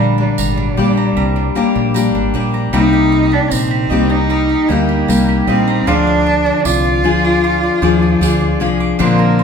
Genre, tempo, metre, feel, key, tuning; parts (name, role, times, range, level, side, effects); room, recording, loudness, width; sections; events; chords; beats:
acoustic pop; 77 BPM; 4/4; straight; A4 = 439 Hz
rich cello; melody; 0.0-9.4 s; G3 to F4; -17 LUFS; right 1 dB
picked steel-string acoustic guitar; accompaniment; 0.0-9.4 s; Bb2 to Bb4; -15 LUFS; left 4 dB
bowl-back mandolin; arpeggios; 0.0-9.4 s; G3 to D6; -22 LUFS; right 5 dB
woody fretless electric bass; bass; 0.0-9.4 s; Ab1 to Eb2; -19 LUFS; right 2 dB
tambourine; percussion; 0.4-8.4 s; -27 LUFS; right 7 dB
wet large studio reverb, RT60 1.2 s; band playing live in one room; -12 LUFS; side -6 dB against mid
0.0-9.4 A section
0.0 Gm; 2.7 Cm7; 5.9 Ddim
0.39 1.17 1.95 | 2.73 3.52 4.30 5.08 | 5.86 6.65 7.43 8.21 | 8.99